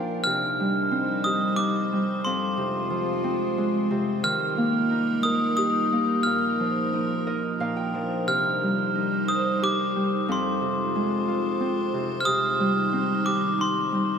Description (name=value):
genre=children's music, lullaby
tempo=90 BPM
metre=3/4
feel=rubato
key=unclear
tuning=A4 = 441 Hz
part: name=Celtic harp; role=accompaniment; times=0.0-14.2 s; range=F2 to G5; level=-26 LUFS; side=equal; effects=none
part: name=evolving wavetable pad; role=sustained chords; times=0.0-14.2 s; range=Eb3 to C5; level=-29 LUFS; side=equal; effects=chorus, built-in reverb
part: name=glockenspiel with hard plastic mallets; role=melody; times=0.2-14.2 s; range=C6 to F6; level=-26 LUFS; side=equal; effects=none
room=wet cathedral reverb, RT60 5.5 s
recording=in a vast, echoing space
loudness=-22 LUFS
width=side -7 dB against mid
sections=0.2-14.2 A section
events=harp fill 0.0, 6.9-8.3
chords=0.2 Cm; 2.3 Fm; 4.2 Eb; 6.3 Bbsus4; 7.6 Bb; 8.3 Cm; 10.3 Fm; 12.3 Cm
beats=| 0.25 0.92 1.59 | 2.26 2.92 3.58 | 4.24 4.91 5.58 | 6.25 6.93 7.61 | 8.29 8.96 9.63 | 10.30 10.96 11.62 | 12.27 12.93 13.60